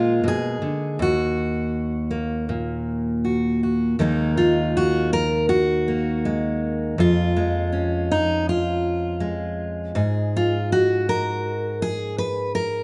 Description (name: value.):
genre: folk, solo fingerstyle acoustic guitar.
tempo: 80 BPM.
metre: 4/4.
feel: straight.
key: Eb minor.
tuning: A4 = 440 Hz.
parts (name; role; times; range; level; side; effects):
fingerpicked steel-string acoustic guitar; solo; 0.0-12.8 s; Eb2 to Cb5; -22 LUFS; equal; none.
room: wet large studio reverb, RT60 1.3 s.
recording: nothing above 10.8 kHz.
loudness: -22 LUFS.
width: mono.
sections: 0.0-4.0 A section; 4.0-12.8 B section.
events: none.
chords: 0.0 Bb7; 1.0 Ebm; 7.0 Db/F; 10.0 N.C..